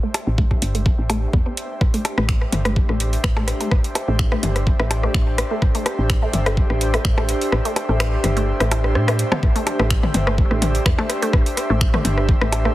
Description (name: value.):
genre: minimal techno.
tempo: 126 BPM.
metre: 4/4.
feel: swing 54% on 16ths.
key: A minor.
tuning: A4 = 441 Hz.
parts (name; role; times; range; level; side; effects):
resonant blip pluck; riff; 0.0-12.7 s; A3 to E4; -28 LUFS; equal; phaser, cassette tape, sidechain pumping, dub echo.
airy breathy pad; texture; 0.0-12.7 s; D4 to E5; -26 LUFS; equal; chorus, sidechain pumping.
garage drum kit; drums; 0.1-12.6 s; finger snaps, hi-hat, rim click; -26 LUFS; right 1 dB; overdrive, studio ambience.
minimal click drum kit; percussion; 0.1-12.7 s; percussion blips, rim click, toms; -25 LUFS; left 1 dB; studio ambience, dub echo.
woody FM bass; bass; 0.3-12.7 s; G1 to A2; -21 LUFS; equal; sidechain pumping.
electronic kick drum; drums; 0.4-12.4 s; none; -18 LUFS; equal; overdrive, studio ambience.
room: little or no reverb.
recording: heavily compressed radio sound, multiband compression.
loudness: -17 LUFS.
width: side -16 dB against mid.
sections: 0.0-9.4 A section; 9.4-12.7 B section.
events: fade-in on analog synth pad 0.0-9.4; filter sweep on synth pluck 0.0-9.4; kick drops out 7.5-9.4; drum fill 9.0-9.4; drop 9.4-12.7.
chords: 0.0 Am.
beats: 0.38 0.86 1.33 | 1.81 2.29 2.76 3.24 | 3.71 4.19 4.67 5.14 | 5.62 6.10 6.57 7.05 | 7.53 8.00 8.48 8.95 | 9.43 9.91 10.38 10.86 | 11.33 11.81 12.29.